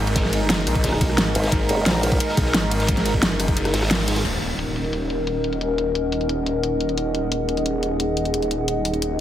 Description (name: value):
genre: dark technical drum and bass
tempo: 176 BPM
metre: 4/4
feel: straight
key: Eb minor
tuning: A4 = 441 Hz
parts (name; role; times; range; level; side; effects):
- dark analog pad; sustained chords; 0.0-9.2 s; Ab3 to Eb5; -25 LUFS; right 1 dB; chorus, vintage 12-bit sampler grit, sidechain pumping
- snarling distorted saw bass; bass; 0.0-9.2 s; Eb1 to Cb2; -26 LUFS; equal; distortion, sidechain pumping
- crunchy breakbeat drum kit; drums; 0.1-4.2 s; hi-hat, ride cymbal, snare drum; -31 LUFS; equal; high-pass filter on cymbals, high-pass filter on hats, high-pass filter on snare, high-pass filter on room
- dubstep drum kit; drums; 0.1-9.1 s; crash cymbal, hi-hat, ride cymbal, rim click, snare drum; -24 LUFS; equal; overdrive, low-pass filter on hats, low-pass filter on cymbals, low-pass filter on snare
- electronic kick drum; drums; 0.2-3.5 s; none; -22 LUFS; equal; overdrive
- formant-sweep wobble bass; bass; 1.4-2.2 s; Gb1 to Bb1; -22 LUFS; equal; chorus
- impact; sound effects; 4.2-5.6 s; none; -31 LUFS; equal; none
- warbly tape-like pad; texture; 4.8-9.2 s; Db4 to Gb5; -24 LUFS; left 3 dB; chorus, built-in reverb, sidechain pumping
room: light reverb, small room ambience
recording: heavily compressed radio sound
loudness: -19 LUFS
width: side -11 dB against mid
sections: 0.0-4.2 A section; 4.2-9.2 B section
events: drop 0.0-4.2; kick drops out 3.6-4.2; band accent 3.9; impact 4.2-5.6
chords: 0.0 Abm7; 4.2 Ebm7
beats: | 0.16 0.50 0.84 1.18 | 1.52 1.86 2.20 2.54 | 2.88 3.23 3.57 3.91 | 4.25 4.59 4.93 5.27 | 5.61 5.95 6.29 6.63 | 6.98 7.32 7.66 8.00 | 8.34 8.68 9.02